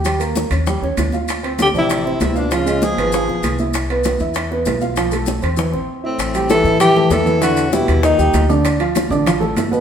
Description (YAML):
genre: Afro-Cuban jazz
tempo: 196 BPM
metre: 4/4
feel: straight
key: unclear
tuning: A4 = 439 Hz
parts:
  - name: dark grand piano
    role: accompaniment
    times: 0.0-9.8 s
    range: B2 to A5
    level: -19 LUFS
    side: right 2 dB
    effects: none
  - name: upright bass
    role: bass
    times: 0.0-9.8 s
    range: G1 to A2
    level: -22 LUFS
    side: left 1 dB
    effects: none
  - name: congas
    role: percussion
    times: 0.0-9.8 s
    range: none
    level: -25 LUFS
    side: right 1 dB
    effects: none
  - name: maracas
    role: percussion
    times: 0.0-9.8 s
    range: none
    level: -32 LUFS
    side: left 5 dB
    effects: none
  - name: bongos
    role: percussion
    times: 0.1-9.8 s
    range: none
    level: -26 LUFS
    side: left 4 dB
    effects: none
  - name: timbales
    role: percussion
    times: 0.1-9.7 s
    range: none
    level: -27 LUFS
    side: right 4 dB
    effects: none
  - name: breathy alto saxophone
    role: melody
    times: 1.6-3.6, 6.1-8.5 s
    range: C4 to A4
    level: -18 LUFS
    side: left 1 dB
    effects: none
  - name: breathy trombone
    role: second line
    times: 1.6-3.6, 6.0-8.5 s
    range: A2 to F3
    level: -22 LUFS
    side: left 3 dB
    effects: none
room: wet stone room reverb, RT60 1.4 s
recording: band playing live in one room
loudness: -14 LUFS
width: side -8 dB against mid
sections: 0.0-6.2 A section; 6.2-9.8 B section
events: break 5.9-6.2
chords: 0.1 Eb9; 1.3 Dm7; 2.5 Db7; 3.7 Cmaj7; 5.0 Fmaj7#11/B; 5.6 Am; 6.2 Am7; 7.4 Em7; 8.0 D#; 8.6 Dm